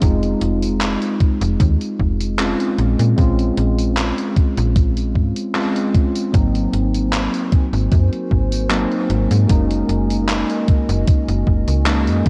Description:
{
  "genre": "vaporwave",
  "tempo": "76 BPM",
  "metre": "4/4",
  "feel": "swing 53% on 16ths",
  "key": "Bb minor",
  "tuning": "A4 = 436 Hz",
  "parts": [
    { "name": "bell-like tine electric piano", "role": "accompaniment", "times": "0.0-12.3 s", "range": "Gb3 to F4", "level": "-23 LUFS", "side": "equal", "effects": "analog chorus, vintage 12-bit sampler grit, tape echo" },
    { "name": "slap-like FM bass", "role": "bass", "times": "0.0-12.3 s", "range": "F1 to Bb2", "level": "-21 LUFS", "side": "equal", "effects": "tube saturation" },
    { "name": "electronic kick drum", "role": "drums", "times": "0.0-12.3 s", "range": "none", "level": "-18 LUFS", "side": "equal", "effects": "none" },
    { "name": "gated 80s digital drum machine", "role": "drums", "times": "0.0-12.3 s", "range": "handclaps, hi-hat, tambourine", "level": "-28 LUFS", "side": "equal", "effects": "gated reverb" },
    { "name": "warbly tape-like pad", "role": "sustained chords", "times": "6.8-12.3 s", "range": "Gb4 to Ab5", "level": "-32 LUFS", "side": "equal", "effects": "chorus, built-in reverb, vintage 12-bit sampler grit" }
  ],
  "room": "light reverb",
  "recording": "cassette tape",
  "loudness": "-18 LUFS",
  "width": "mono",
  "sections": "0.0-12.3 A section",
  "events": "none",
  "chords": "0.0 Fm7; 2.8 Bbm9; 6.3 Ab9; 9.5 Gb69",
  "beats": "| 0.02 0.81 1.60 2.39 | 3.18 3.97 4.76 5.55 | 6.34 7.13 7.92 8.71 | 9.50 10.29 11.07 11.86"
}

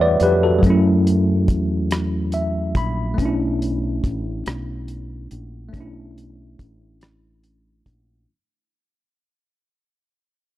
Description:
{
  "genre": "slow six-eight R&B",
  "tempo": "47 BPM (dotted quarters)",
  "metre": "6/8",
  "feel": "straight",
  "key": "B minor",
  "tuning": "A4 = 441 Hz",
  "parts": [
    { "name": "tine electric piano", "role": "accompaniment", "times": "0.0-8.3 s", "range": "F#3 to B5", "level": "-20 LUFS", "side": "equal", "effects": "fast stereo tremolo" },
    { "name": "fingered electric bass", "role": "bass", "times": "0.0-8.3 s", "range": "A1 to F#2", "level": "-24 LUFS", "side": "equal", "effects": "none" },
    { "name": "cloth-damped thuddy drum kit", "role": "drums", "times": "0.2-8.1 s", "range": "hi-hat, kick drum, rim click", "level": "-21 LUFS", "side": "equal", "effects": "none" }
  ],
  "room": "small room ambience",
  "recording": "dry, gritty hardware recording",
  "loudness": "-17 LUFS",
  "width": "side -14 dB against mid",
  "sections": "0.0-8.3 A section",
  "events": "fade-out 0.0-8.3; tine electric piano fill 1.9-3.2",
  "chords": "0.0 Em11; 0.6 F#m7; 3.2 Bm11",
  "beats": "| 0.63 1.91 | 3.19 4.46 | 5.74 7.01"
}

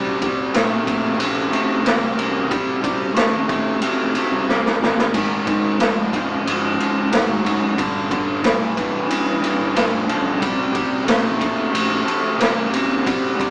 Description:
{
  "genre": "blues rock power trio and southern rock",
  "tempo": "91 BPM",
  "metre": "4/4",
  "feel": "straight",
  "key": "unclear",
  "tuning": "A4 = 439 Hz",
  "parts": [
    { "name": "sludgy distorted guitar", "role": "riff", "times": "0.0-13.5 s", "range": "G2 to Bb3", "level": "-20 LUFS", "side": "equal", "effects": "overdrive" },
    { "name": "fuzz fingered electric bass", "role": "bass", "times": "0.0-13.0 s", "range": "F#1 to C3", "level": "-30 LUFS", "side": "equal", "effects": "overdrive" },
    { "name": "raw garage drum kit", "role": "drums", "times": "0.2-13.5 s", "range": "crash cymbal, kick drum, ride cymbal, snare drum", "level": "-19 LUFS", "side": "equal", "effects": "none" }
  ],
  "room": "moderate stone room reverb, RT60 1.0 s",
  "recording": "band playing live in one room, small speaker sound",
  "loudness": "-16 LUFS",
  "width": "side -32 dB against mid",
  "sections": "0.0-13.5 A section",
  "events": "drum fill 4.5-5.1",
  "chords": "0.0 C5; 5.1 Ab5; 7.8 G7; 10.4 C5",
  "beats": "0.54 1.19 1.85 | 2.50 3.16 3.82 4.47 | 5.13 5.79 6.45 7.11 | 7.77 8.43 9.09 9.75 | 10.41 11.08 11.74 12.40 | 13.06"
}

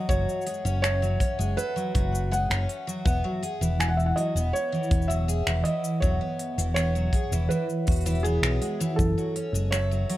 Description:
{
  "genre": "folktronica",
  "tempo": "81 BPM",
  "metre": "4/4",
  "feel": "straight",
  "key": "unclear",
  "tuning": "A4 = 440 Hz",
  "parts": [
    { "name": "felt-muted upright piano", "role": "melody", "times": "0.0-10.2 s", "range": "G#4 to G#5", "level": "-30 LUFS", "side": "right 1 dB", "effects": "tape echo" },
    { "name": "vibraphone with medium hard mallets", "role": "second line", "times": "0.0-10.2 s", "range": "F#4 to F#5", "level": "-35 LUFS", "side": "left 4 dB", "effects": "tape echo" },
    { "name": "picked twelve-string acoustic guitar", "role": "arpeggios", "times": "0.0-10.2 s", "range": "E3 to A4", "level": "-30 LUFS", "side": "right 1 dB", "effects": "vintage 12-bit sampler grit" },
    { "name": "fingered electric bass", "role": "bass", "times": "0.1-10.0 s", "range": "E1 to B1", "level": "-26 LUFS", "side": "equal", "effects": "tube saturation" },
    { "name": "kick drum", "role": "drums", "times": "0.1-9.1 s", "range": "none", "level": "-26 LUFS", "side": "equal", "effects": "none" },
    { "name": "organic electronic drum kit", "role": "drums", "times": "0.1-10.2 s", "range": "finger snaps, hi-hat, shaker", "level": "-32 LUFS", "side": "equal", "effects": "overdrive" }
  ],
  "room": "light reverb, studio ambience",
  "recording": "none",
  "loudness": "-23 LUFS",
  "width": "side -15 dB against mid",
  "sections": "0.0-10.2 A section",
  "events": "none",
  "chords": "0.0 F#sus2; 3.1 Eadd9; 9.0 F#madd9",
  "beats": "| 0.10 0.84 1.58 2.32 | 3.06 3.80 4.54 5.28 | 6.02 6.76 7.50 8.24 | 8.98 9.73"
}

